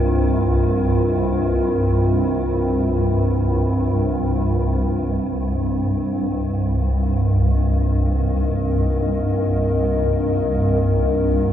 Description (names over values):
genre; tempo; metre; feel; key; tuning
dark ambient drone; free time; none; none; unclear; A4 = 441 Hz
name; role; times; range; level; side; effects
dark analog pad; sustained chords; 0.0-11.5 s; C4 to G5; -22 LUFS; equal; chorus
swarming drone; drone; 0.0-11.5 s; C2 to G2; -18 LUFS; equal; built-in reverb
bronze singing bowl; texture; 5.1-11.5 s; Eb5; -47 LUFS; left 2 dB; none
room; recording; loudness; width
wet cathedral reverb, RT60 5.7 s; none; -17 LUFS; side -10 dB against mid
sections
0.0-5.1 A section; 5.1-11.5 B section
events
none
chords
0.0 Ebadd9/C